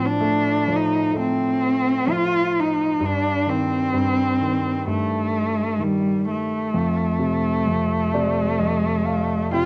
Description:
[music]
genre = acoustic folk-pop ballad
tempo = 64 BPM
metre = 4/4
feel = straight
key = unclear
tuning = A4 = 440 Hz
[part]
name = warm cello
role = melody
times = 0.0-9.7 s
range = G3 to F4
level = -23 LUFS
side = equal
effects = cassette tape
[part]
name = warm grand piano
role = accompaniment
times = 0.0-9.7 s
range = F2 to G5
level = -26 LUFS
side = equal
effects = cassette tape
[sound]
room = light reverb, studio ambience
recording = home recording on cassette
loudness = -22 LUFS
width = mono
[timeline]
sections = 0.0-9.7 A section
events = none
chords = 0.0 F/A; 3.0 Cm/G; 6.7 F

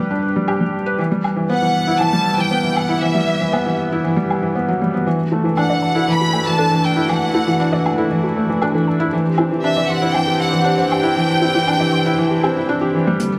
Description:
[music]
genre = piano and strings electronica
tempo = 118 BPM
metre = 4/4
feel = straight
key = unclear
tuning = A4 = 438 Hz
[part]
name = rich chamber string section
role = sustained chords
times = 0.0-13.4 s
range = D3 to G4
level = -27 LUFS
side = equal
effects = none
[part]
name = felt-muted upright piano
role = riff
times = 0.0-13.3 s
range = E3 to B4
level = -20 LUFS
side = equal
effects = digital delay
[part]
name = woodblock and hi-hat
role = drums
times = 0.5-13.3 s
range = none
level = -28 LUFS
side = equal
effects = none
[part]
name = clear studio violin section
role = melody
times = 1.5-12.7 s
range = E5 to B5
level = -22 LUFS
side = equal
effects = none
[part]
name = warbly dusty pluck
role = arpeggios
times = 5.3-13.0 s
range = E4 to C6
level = -28 LUFS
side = equal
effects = none
[part]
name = warm sub bass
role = bass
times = 13.2-13.4 s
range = none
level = barely audible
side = none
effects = none
[sound]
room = wet recital hall reverb, RT60 1.4 s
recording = none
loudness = -18 LUFS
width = mono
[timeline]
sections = 0.0-13.2 A section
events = fade-in on string section 0.0-13.2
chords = 0.0 G; 1.0 Emadd9; 5.1 Dadd9; 9.1 Cadd9

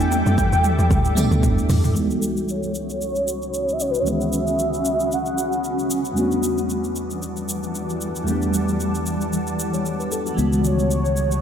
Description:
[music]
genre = amapiano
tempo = 114 BPM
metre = 4/4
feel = swing 55% on 16ths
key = unclear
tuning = A4 = 439 Hz
[part]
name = warm velvety synth lead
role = melody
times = 0.0-5.9, 10.7-11.4 s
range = B4 to G5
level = -25 LUFS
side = equal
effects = chorus, low-pass filter, diffuse ambient delay
[part]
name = crystalline FM electric piano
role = accompaniment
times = 0.0-11.4 s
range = C#2 to C#5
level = -25 LUFS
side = equal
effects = chorus, phaser, low-pass filter
[part]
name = granular cloud pad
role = sustained chords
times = 0.0-11.4 s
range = E3 to D#6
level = -25 LUFS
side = equal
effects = built-in reverb, low-pass filter
[part]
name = deep log drum bass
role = bass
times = 0.0-1.9 s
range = D2 to F#2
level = -20 LUFS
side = equal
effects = none
[part]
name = deep house drum kit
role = drums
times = 0.0-11.4 s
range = hi-hat, kick drum, shaker, toms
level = -25 LUFS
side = equal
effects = none
[part]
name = fingered electric bass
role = bass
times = 10.4-11.4 s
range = C#2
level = -22 LUFS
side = equal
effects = none
[sound]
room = moderate plate reverb, RT60 2.3 s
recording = dreamy mix soaked in reverb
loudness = -19 LUFS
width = side -8 dB against mid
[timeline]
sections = 0.0-2.0 A section; 2.0-11.4 B section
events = drop 0.0-2.0; drum fill 0.0-2.0; filter sweep 2.0-11.4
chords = 0.0 Em11; 2.0 C#m11; 6.2 Em11; 10.4 C#m11

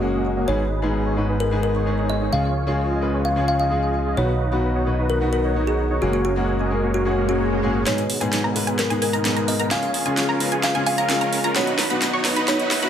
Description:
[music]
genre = EDM, festival progressive house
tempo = 130 BPM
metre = 4/4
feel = straight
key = unclear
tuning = A4 = 440 Hz
[part]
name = kalimba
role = melody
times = 0.0-12.7 s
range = F#4 to E#5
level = -26 LUFS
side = left 1 dB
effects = digital delay
[part]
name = clear concert grand piano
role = accompaniment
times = 0.0-12.9 s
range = G#2 to B4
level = -25 LUFS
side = left 2 dB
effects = none
[part]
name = dense compressed supersaw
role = riff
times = 0.0-12.9 s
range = A#3 to D#5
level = -25 LUFS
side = right 1 dB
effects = low-pass filter, digital delay
[part]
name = fat analog bass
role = bass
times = 0.0-7.8 s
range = F#1 to C#2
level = -24 LUFS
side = equal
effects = none
[part]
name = swell and riser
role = sound effects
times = 7.2-12.9 s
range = none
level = -30 LUFS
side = right 2 dB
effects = none
[part]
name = wide unison pluck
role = arpeggios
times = 7.9-12.9 s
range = G#5 to C#6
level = -28 LUFS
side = right 1 dB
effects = digital delay
[part]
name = big-room dance drum kit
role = drums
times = 7.9-12.9 s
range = hi-hat, snare drum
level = -24 LUFS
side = right 1 dB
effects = high-pass filter on snare, high-pass filter on hats, high-pass filter on room
[sound]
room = light reverb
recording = high-pass filter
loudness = -19 LUFS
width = side -9 dB against mid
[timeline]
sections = 0.0-7.9 A section; 7.9-12.9 B section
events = swell 7.2-7.9; build-up 7.9-12.9; drum fill 7.9-12.9; riser 7.9-12.9; filter sweep on supersaw synth 7.9-12.9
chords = 0.5 G#m; 2.3 C#; 4.2 B; 6.0 F#add9; 7.9 G#m; 9.7 C#; 11.6 B

